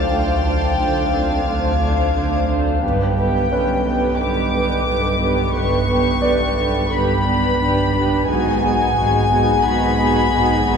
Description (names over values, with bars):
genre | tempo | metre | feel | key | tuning
cinematic | 88 BPM | 4/4 | straight | unclear | A4 = 440 Hz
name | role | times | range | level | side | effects
warm studio violin section | melody | 0.0-10.8 s | F5 to D6 | -23 LUFS | left 3 dB | none
dark studio violin section | second line | 0.0-10.8 s | F4 to C5 | -23 LUFS | right 1 dB | none
warm studio viola section | accompaniment | 0.0-10.8 s | D3 to D#4 | -23 LUFS | right 3 dB | none
glass harmonica | sustained chords | 0.0-10.8 s | B4 to A5 | -26 LUFS | left 2 dB | none
saturated sub bass | drone | 0.0-10.8 s | B1 | -25 LUFS | equal | none
bright grand piano | texture | 0.0-8.3 s | C4 to D5 | -29 LUFS | left 1 dB | none
warm studio violin section | texture | 0.0-10.8 s | D#5 to A6 | -30 LUFS | left 4 dB | none
dark symphonic double bass section | bass | 0.1-10.8 s | G1 to D2 | -26 LUFS | right 2 dB | none
warm studio cello section | bass | 0.1-10.8 s | D2 to G#2 | -25 LUFS | right 2 dB | none
room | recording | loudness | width
wet recital hall reverb, RT60 1.4 s | heard from further back in the room | -15 LUFS | side -6 dB against mid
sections
0.0-10.8 A section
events
none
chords
0.0 Dm7; 2.8 G; 8.3 G#m7